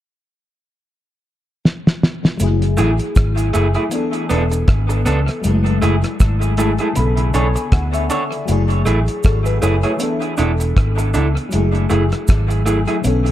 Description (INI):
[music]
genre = lovers rock reggae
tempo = 79 BPM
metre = 4/4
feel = swing 57% on 16ths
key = F# minor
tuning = A4 = 440 Hz
[part]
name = cloth-damped thuddy drum kit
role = drums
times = 1.7-13.3 s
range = hi-hat, kick drum, rim click, snare drum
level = -18 LUFS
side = equal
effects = dub echo
[part]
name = FM electric piano with soft pad layer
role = accompaniment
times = 2.4-13.3 s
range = C#3 to B5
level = -22 LUFS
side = left 4 dB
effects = chorus, phaser
[part]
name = vintage muted fingered electric bass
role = bass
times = 2.4-13.3 s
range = E1 to D2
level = -17 LUFS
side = equal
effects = none
[part]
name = cabasa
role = percussion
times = 2.4-13.2 s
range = none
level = -36 LUFS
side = right 4 dB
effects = dub echo
[part]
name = electric guitar through a small old amp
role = stabs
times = 2.8-13.0 s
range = A3 to C#5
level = -21 LUFS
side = right 2 dB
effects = dub echo
[sound]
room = studio reverb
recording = dark, warm production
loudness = -14 LUFS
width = side -13 dB against mid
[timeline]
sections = 0.0-2.4 A section; 2.4-13.3 B section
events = drum fill 1.6-2.4; FM electric piano fill 6.2-8.5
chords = 0.0 N.C.; 2.4 F#m9; 3.9 E7sus4; 5.4 F#m9; 7.0 Bm9; 8.5 F#m9; 10.0 E7sus4; 11.5 F#m9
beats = 0.12 0.88 1.64 | 2.40 3.16 3.92 4.68 | 5.44 6.20 6.96 7.72 | 8.48 9.24 10.01 10.77 | 11.53 12.29 13.05